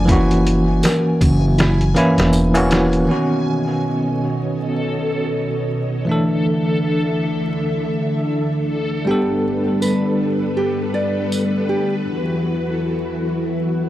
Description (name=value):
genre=trip hop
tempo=80 BPM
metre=4/4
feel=swing 59% on 16ths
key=unclear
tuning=A4 = 443 Hz
part: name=barky tine electric piano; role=accompaniment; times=0.0-12.1 s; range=D#3 to A4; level=-19 LUFS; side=equal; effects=tremolo, tape echo
part: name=upright bass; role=bass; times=0.0-3.0 s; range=E1 to F#1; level=-18 LUFS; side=equal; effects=none
part: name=backwards swelling texture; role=texture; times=0.0-12.1 s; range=A4 to G#5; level=-29 LUFS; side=left 1 dB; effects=built-in reverb
part: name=nylon-string guitar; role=arpeggios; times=0.1-2.9, 9.1-11.9 s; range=E4 to D5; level=-25 LUFS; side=right 1 dB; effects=tape echo
part: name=trip hop sampler-style drum kit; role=drums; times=0.1-3.1 s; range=hi-hat, kick drum, snare drum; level=-19 LUFS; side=equal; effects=none
part: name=tambourine and triangle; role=percussion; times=0.8-2.7, 9.8-11.5 s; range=none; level=-32 LUFS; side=right 2 dB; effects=none
part: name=string machine, cellos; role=sustained chords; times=3.1-13.9 s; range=B2 to E5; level=-22 LUFS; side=equal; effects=ensemble chorus
room=light reverb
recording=dry, gritty hardware recording, vinyl crackle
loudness=-16 LUFS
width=side -14 dB against mid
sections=0.0-3.1 A section; 3.1-13.9 B section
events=kick drops out 1.6-3.1; break 12.1-13.9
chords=0.1 F#7; 3.1 Badd9; 6.1 Dsus2; 9.1 Gadd9; 12.1 Esus2